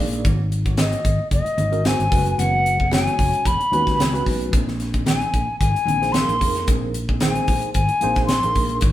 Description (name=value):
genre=electric jazz fusion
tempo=112 BPM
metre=4/4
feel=swing 54% on 16ths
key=unclear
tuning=A4 = 439 Hz
part: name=tine electric piano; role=accompaniment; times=0.0-8.8 s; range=Ab3 to D5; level=-28 LUFS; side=right 2 dB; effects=fast stereo tremolo
part: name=fretless electric bass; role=bass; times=0.0-8.9 s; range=Fb1 to F2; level=-24 LUFS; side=equal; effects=none
part: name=mellow electric guitar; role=stabs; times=0.1-8.9 s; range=Eb3 to Bb4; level=-32 LUFS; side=left 2 dB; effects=none
part: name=crisp fusion drum kit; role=drums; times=0.1-8.9 s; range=hi-hat, kick drum, snare drum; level=-22 LUFS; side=equal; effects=none
part: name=congas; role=percussion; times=0.2-8.9 s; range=none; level=-28 LUFS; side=right 3 dB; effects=none
part: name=hollow concert flute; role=melody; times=0.8-8.8 s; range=Eb5 to C6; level=-21 LUFS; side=left 2 dB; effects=none
room=moderate stone room reverb, RT60 1.0 s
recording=band playing live in one room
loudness=-17 LUFS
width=side -13 dB against mid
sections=0.0-8.9 A section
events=none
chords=0.3 Ab9sus4; 2.1 Gb9sus4; 4.5 Bb9sus4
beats=| 0.25 0.78 1.32 1.85 | 2.38 2.92 3.46 3.99 | 4.53 5.06 5.60 6.14 | 6.68 7.22 7.75 8.29 | 8.83